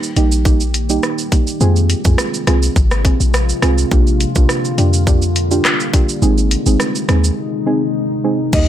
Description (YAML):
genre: dancehall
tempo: 104 BPM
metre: 4/4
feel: straight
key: unclear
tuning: A4 = 440 Hz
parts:
  - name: deep mellow chord stab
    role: accompaniment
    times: 0.0-8.7 s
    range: G3 to Ab4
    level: -19 LUFS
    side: right 4 dB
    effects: chorus, sidechain pumping
  - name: deep dark ambient pad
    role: sustained chords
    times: 0.0-8.7 s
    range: C3 to G4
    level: -22 LUFS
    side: left 2 dB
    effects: chorus, built-in reverb, sidechain pumping
  - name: island pop drum kit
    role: drums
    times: 0.0-8.7 s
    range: crash cymbal, handclaps, hi-hat, kick drum, rim click, shaker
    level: -16 LUFS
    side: equal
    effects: none
  - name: warm 808-style bass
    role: bass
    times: 0.2-8.7 s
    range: Ab1 to F2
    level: -15 LUFS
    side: equal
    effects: none
  - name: marimba with medium mallets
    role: melody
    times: 8.5-8.7 s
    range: Eb5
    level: -22 LUFS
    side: right 1 dB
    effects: none
room: digital ambience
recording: none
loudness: -12 LUFS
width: side -11 dB against mid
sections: 0.0-8.5 A section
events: break 7.4-8.5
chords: 0.0 Eb; 1.6 Fm; 3.9 Bb6; 6.2 Ab